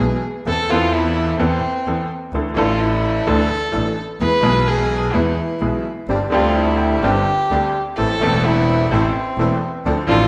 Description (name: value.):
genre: tango.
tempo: 128 BPM.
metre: 4/4.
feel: rubato.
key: A minor.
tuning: A4 = 440 Hz.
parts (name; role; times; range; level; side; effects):
warm violin; second line; 0.0-10.3 s; C4 to B4; -23 LUFS; equal; none.
bright concert grand piano; accompaniment; 0.0-10.3 s; E1 to A4; -22 LUFS; equal; none.
clear double bass; bass; 0.0-10.3 s; E1 to E2; -24 LUFS; equal; none.
bandoneon; stabs; 6.1-10.3 s; F3 to E4; -28 LUFS; equal; none.
room: wet echo chamber reverb, RT60 1.7 s.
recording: none.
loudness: -18 LUFS.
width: mono.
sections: 0.0-10.3 A section.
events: violin solo 0.0-10.3.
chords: 0.5 Amadd9/E; 2.3 Dsus2; 4.2 E; 6.1 Gsus4; 8.0 Am.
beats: | 0.46 0.93 1.40 1.86 | 2.33 2.80 3.26 3.73 | 4.20 4.67 5.14 5.62 | 6.09 6.57 7.04 7.51 | 7.98 8.45 8.91 9.38 | 9.85.